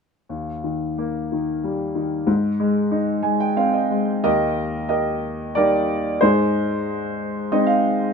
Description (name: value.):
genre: classical, lyrical solo piano.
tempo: 91 BPM.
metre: 3/4.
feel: uneven beats, rubato.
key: Eb major.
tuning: A4 = 439 Hz.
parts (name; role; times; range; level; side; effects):
clear concert grand piano; solo; 0.3-8.1 s; Eb2 to Ab5; -19 LUFS; equal; none.
room: moderate studio reverb, RT60 0.5 s.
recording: minimal, uncompressed stereo recording.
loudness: -19 LUFS.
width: side -5 dB against mid.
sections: 0.3-4.2 A section; 4.2-8.1 B section.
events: grand piano fill 2.9-4.2, 7.2-8.1.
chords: 0.3 Eb; 2.3 Ab; 4.2 Eb; 6.2 Ab.